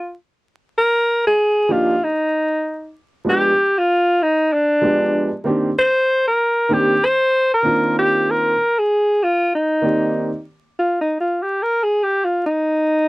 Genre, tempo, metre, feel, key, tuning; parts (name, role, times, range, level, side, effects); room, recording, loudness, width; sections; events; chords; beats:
hip hop; 96 BPM; 4/4; swing 57% on 16ths; C minor; A4 = 439 Hz
warm alto saxophone; melody; 0.0-13.1 s; D4 to C5; -16 LUFS; equal
warm upright piano; accompaniment; 1.7-10.3 s; Eb3 to D5; -19 LUFS; right 1 dB
light reverb; dry, close 1970s-style studio recording, vinyl crackle; -15 LUFS; side -22 dB against mid
0.0-10.8 A section; 10.8-13.1 B section
break 0.0-0.8; alto saxophone solo 10.8-13.1
0.0 N.C.; 0.8 Ebmaj9; 3.3 G7b9; 5.8 Cm9; 10.8 N.C.
0.14 | 0.77 1.39 2.02 2.64 | 3.27 3.89 4.52 5.14 | 5.77 6.39 7.02 7.64 | 8.27 8.89 9.52 10.14 | 10.77 11.39 12.02 12.64